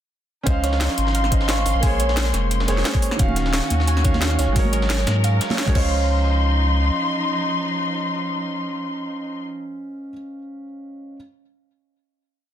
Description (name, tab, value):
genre	liquid drum and bass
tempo	176 BPM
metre	4/4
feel	swing 54% on 16ths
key	Db major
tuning	A4 = 438 Hz
part	felt-muted upright piano	accompaniment	0.4-11.2 s	Eb3 to F5	-26 LUFS	right 2 dB	tape echo
part	muted studio string section	sustained chords	0.5-9.4 s	F3 to C6	-26 LUFS	left 2 dB	sidechain pumping
part	warm sub bass	bass	0.5-6.9 s	Eb1 to Ab2	-20 LUFS	equal	none
part	breakbeat sampler-style drum kit	drums	0.5-5.7 s	hi-hat, snare drum	-31 LUFS	left 1 dB	high-pass filter on hats, high-pass filter on snare
part	drum and bass drum kit	drums	0.5-5.8 s	crash cymbal, hi-hat, snare drum	-26 LUFS	left 1 dB	none
part	electronic kick drum	drums	0.5-5.8 s	none	-20 LUFS	equal	none
part	harp-like synth pluck	arpeggios	0.6-6.1 s	Db5 to Db6	-30 LUFS	right 5 dB	chorus, tape echo
part	congas	percussion	3.3-5.6 s	none	-31 LUFS	right 3 dB	none
room	light reverb, digital ambience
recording	dense, heavily limited modern master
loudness	-18 LUFS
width	side -10 dB against mid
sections	0.5-5.9 drop; 5.9-8.6 final hit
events	drop 0.5-5.9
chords	0.5 Dbmaj9; 1.8 Bbm9; 3.2 Ebm9; 4.6 Ab9sus4; 5.8 Dbmaj9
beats	| 0.47 0.81 1.15 1.49 | 1.83 2.17 2.51 2.85 | 3.19 3.54 3.88 4.22 | 4.56 4.90 5.24 5.58 | 5.92 6.26 6.60 6.95 | 7.29 7.63 7.97 8.31